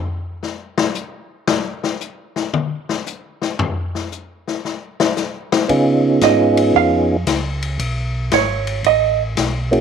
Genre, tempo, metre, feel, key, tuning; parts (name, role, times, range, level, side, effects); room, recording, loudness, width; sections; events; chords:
soul jazz organ trio; 114 BPM; 4/4; swing 68% on 8ths; A4 = 440 Hz
swinging big-band drum kit; drums; 0.4-9.8 s; hi-hat, kick drum, ride cymbal, snare drum, toms; -21 LUFS; left 6 dB
percussive tonewheel organ; melody; 5.7-9.8 s; A#3 to G#4; -14 LUFS; right 2 dB; slow rotary speaker, chorus vibrato
mellow tonewheel organ; bass; 5.7-9.8 s; G#1 to C#3; -22 LUFS; equal; slow rotary speaker
hollow-body jazz guitar; accompaniment; 6.2-9.2 s; C#5 to E#5; -16 LUFS; right 15 dB
light reverb, studio ambience; 1960s-style stereo with parts hard left and right; -16 LUFS; side -7 dB against mid
0.0-9.8 A section
hollow-body jazz guitar solo 0.0-9.8; drum solo 0.0-5.7
0.0 N.C.; 5.7 C#9; 7.8 Bsus2